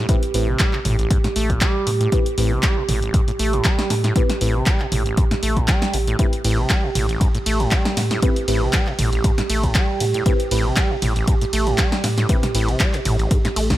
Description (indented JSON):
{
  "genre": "acid house",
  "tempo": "118 BPM",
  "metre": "4/4",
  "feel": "swing 54% on 16ths",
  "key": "A minor",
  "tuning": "A4 = 440 Hz",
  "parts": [
    { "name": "dark analog pad", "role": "sustained chords", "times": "0.0-13.8 s", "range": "G4", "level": "-27 LUFS", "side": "right 6 dB", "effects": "chorus, sidechain pumping" },
    { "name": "acid bass, saw", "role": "riff", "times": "0.0-13.8 s", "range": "A1 to A3", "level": "-24 LUFS", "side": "equal", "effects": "tube saturation, cassette tape, digital delay" },
    { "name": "warm sub bass", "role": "bass", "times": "0.0-13.8 s", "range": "A1 to A2", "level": "-22 LUFS", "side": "equal", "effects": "tube saturation, sidechain pumping" },
    { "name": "deep mellow chord stab", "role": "stabs", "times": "0.1-12.7 s", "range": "C4 to B4", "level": "-27 LUFS", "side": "left 2 dB", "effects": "chorus, phaser, digital delay" },
    { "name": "electronic kick drum", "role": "drums", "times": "0.1-13.8 s", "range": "none", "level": "-19 LUFS", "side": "equal", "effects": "none" },
    { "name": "punchy analog drum machine", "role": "drums", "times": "0.1-13.8 s", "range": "handclaps, hi-hat, ride cymbal, snare drum, toms", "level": "-24 LUFS", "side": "equal", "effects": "none" }
  ],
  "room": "little or no reverb",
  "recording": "none",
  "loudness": "-17 LUFS",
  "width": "side -14 dB against mid",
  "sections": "0.0-13.8 A section",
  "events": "none",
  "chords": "0.0 Am7"
}